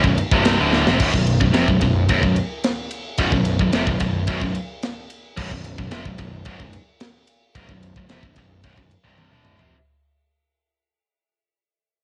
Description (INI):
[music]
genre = heavy metal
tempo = 110 BPM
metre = 4/4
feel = straight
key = B minor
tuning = A4 = 436 Hz
[part]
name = heavy high-gain guitar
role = riff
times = 0.0-9.7 s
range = B1 to D3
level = -23 LUFS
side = equal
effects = distortion, cassette tape
[part]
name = fuzz picked electric bass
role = bass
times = 0.0-9.7 s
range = B0 to E#1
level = -27 LUFS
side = equal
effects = overdrive
[part]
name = tight metal drum kit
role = drums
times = 0.0-9.7 s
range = crash cymbal, kick drum, ride cymbal, snare drum, toms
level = -26 LUFS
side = equal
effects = cassette tape
[sound]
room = light reverb, studio reverb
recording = home recording on cassette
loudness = -19 LUFS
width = mono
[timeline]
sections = 0.0-9.7 A section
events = fade-out 0.0-9.7; drum fill 0.7, 9.2-9.7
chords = 0.0 Bm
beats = 0.46 | 1.00 1.55 2.10 2.65 | 3.19 3.74 4.29 4.83 | 5.38 5.92 6.47 7.01 | 7.56 8.10 8.65 9.19